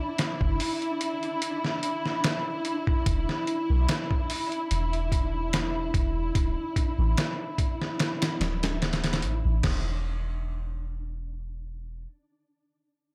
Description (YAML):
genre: trip hop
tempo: 73 BPM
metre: 4/4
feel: swing 54% on 16ths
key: unclear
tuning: A4 = 440 Hz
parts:
  - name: dark studio violin section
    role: sustained chords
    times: 0.0-9.7 s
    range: E4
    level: -34 LUFS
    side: equal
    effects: none
  - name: flickering grainy texture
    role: texture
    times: 0.0-9.7 s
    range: D4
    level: -42 LUFS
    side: equal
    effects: built-in reverb
  - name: trip hop sampler-style drum kit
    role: drums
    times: 0.2-9.8 s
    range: crash cymbal, hi-hat, kick drum, snare drum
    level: -30 LUFS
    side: equal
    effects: none
  - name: soft 808-style bass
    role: bass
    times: 0.4-12.1 s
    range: D1 to B1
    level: -31 LUFS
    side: equal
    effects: tube saturation
room: little or no reverb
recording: none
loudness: -28 LUFS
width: mono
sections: 0.0-9.6 A section; 9.6-12.9 B section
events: none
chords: 0.0 N.C.; 3.1 E5; 6.3 D5; 9.6 N.C.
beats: 0.59 1.42 2.24 | 3.06 3.88 4.70 5.53 | 6.35 7.17 7.99 8.81 | 9.64 10.46 11.28